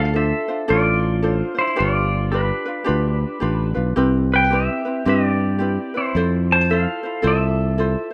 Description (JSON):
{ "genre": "Hawaiian", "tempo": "110 BPM", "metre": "4/4", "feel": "swing 62% on 8ths", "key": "C major", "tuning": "A4 = 440 Hz", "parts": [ { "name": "pedal steel guitar", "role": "melody", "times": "0.0-8.1 s", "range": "D4 to A5", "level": "-24 LUFS", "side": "equal", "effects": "slapback echo" }, { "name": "ukulele", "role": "accompaniment", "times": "0.0-8.1 s", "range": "C4 to C5", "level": "-25 LUFS", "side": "equal", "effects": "none" }, { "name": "overdriven fingered electric bass", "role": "bass", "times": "0.0-7.9 s", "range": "G1 to G2", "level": "-22 LUFS", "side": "equal", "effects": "none" } ], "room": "light reverb, small room ambience", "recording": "rough home demo mix", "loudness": "-20 LUFS", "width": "mono", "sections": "0.0-8.1 A section", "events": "none", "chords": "0.0 Dm7; 1.8 G7; 4.0 Cmaj7; 6.1 Fmaj7" }